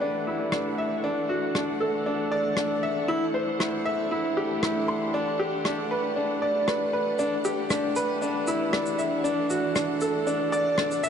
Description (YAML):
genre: piano and strings electronica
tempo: 117 BPM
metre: 4/4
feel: straight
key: unclear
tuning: A4 = 436 Hz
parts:
  - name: rich studio string section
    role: sustained chords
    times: 0.0-11.1 s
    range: E3 to F#5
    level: -32 LUFS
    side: right 1 dB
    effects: low-pass filter
  - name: bright upright piano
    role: riff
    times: 0.0-11.1 s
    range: D4 to C6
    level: -25 LUFS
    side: equal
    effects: ping-pong delay
  - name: warm sub bass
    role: bass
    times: 0.0-10.7 s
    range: none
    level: barely audible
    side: none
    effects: none
  - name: rim click and shaker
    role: drums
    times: 0.5-11.1 s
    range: none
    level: -32 LUFS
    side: equal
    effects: none
room: wet huge ambient reverb, RT60 6.5 s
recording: nothing above 11.0 kHz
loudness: -24 LUFS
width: side -7 dB against mid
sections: 0.0-11.1 A section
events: build-up 0.0-11.1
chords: 0.0 Gmaj7/E; 1.0 Dadd9/E; 3.1 C/E; 5.1 Gmaj7/E; 9.2 Dadd9/E